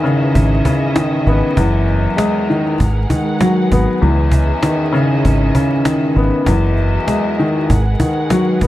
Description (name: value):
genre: hip hop, boom-bap hip-hop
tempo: 98 BPM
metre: 4/4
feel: swing 58% on 16ths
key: C# dorian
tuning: A4 = 440 Hz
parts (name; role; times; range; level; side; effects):
- warm upright piano; accompaniment; 0.0-8.7 s; E2 to B3; -15 LUFS; left 1 dB; cassette tape, high-pass filter, low-pass filter
- warm studio string section; sustained chords; 0.0-8.7 s; F#3 to F#5; -23 LUFS; right 3 dB; high-pass filter, low-pass filter
- cajon; drums; 0.1-8.7 s; none; -21 LUFS; right 1 dB; none
- deep dub fingered electric bass; bass; 0.4-8.7 s; F#1 to C#2; -14 LUFS; equal; none
room: light reverb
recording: dark, warm production, vinyl crackle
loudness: -12 LUFS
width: side -15 dB against mid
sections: 0.0-8.7 A section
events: none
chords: 0.0 C#m9; 1.6 F#13; 2.8 G#m7; 4.0 C#m9; 6.5 F#13; 7.7 G#m7